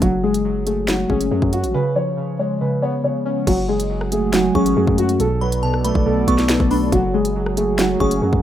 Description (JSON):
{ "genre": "hip hop, drill", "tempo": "139 BPM", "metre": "4/4", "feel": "half-time", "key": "F# harmonic minor", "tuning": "A4 = 439 Hz", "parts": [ { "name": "dark concert grand piano", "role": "melody", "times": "0.0-8.4 s", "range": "F#4 to C#5", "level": "-22 LUFS", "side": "equal", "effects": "tape echo" }, { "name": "warbly lo-fi synth keys", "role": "accompaniment", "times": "0.0-8.4 s", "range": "B2 to F#4", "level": "-20 LUFS", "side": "equal", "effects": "chorus, phaser" }, { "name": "long sustained 808-style bass", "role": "bass", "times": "0.0-8.4 s", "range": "F#1 to F#2", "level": "-23 LUFS", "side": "equal", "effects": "none" }, { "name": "drill drum kit", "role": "drums", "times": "0.0-8.4 s", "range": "crash cymbal, finger snaps, hi-hat, kick drum, rim click, snare drum", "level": "-22 LUFS", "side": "equal", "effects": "none" }, { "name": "dark analog pad", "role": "sustained chords", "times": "4.1-8.4 s", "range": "F#3 to D5", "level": "-27 LUFS", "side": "right 2 dB", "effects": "chorus, phaser" }, { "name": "delicate synth tine bell", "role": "second line", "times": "4.5-8.2 s", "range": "A5 to C#6", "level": "-28 LUFS", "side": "equal", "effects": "chorus, phaser, tape echo" } ], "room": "digital ambience", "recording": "rough home demo mix", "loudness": "-16 LUFS", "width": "side -11 dB against mid", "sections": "0.0-3.5 A section; 3.5-8.4 B section", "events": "none", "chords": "0.0 F#madd9; 1.7 C#7; 3.5 F#madd9; 5.2 Bm7; 6.9 F#madd9" }